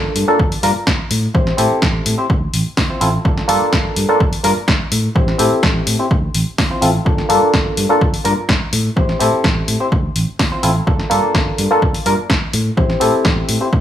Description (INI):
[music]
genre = filtered disco house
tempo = 126 BPM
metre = 4/4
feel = straight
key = G dorian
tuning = A4 = 440 Hz
[part]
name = reed electric piano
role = accompaniment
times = 0.0-13.7 s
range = Bb3 to C5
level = -17 LUFS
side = left 1 dB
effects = phaser, sidechain pumping
[part]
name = fingered electric bass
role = bass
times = 0.0-13.8 s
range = G1 to A2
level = -20 LUFS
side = equal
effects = tube saturation, sidechain pumping
[part]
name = punchy analog drum machine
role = drums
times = 0.2-13.6 s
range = hi-hat, snare drum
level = -20 LUFS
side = left 1 dB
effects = overdrive, sidechain pumping on hats
[part]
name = electronic kick drum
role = drums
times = 0.4-13.8 s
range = none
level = -18 LUFS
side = equal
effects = overdrive
[sound]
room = light reverb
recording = small room ambience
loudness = -13 LUFS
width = side -11 dB against mid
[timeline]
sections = 0.0-13.8 A section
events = none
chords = 0.0 Gm9; 1.1 Am7; 2.3 Dm9; 3.3 Gm9; 4.9 Am7; 6.1 Dm9; 7.1 Gm9; 8.7 Am7; 9.9 Dm9; 10.9 Gm9; 12.5 Am7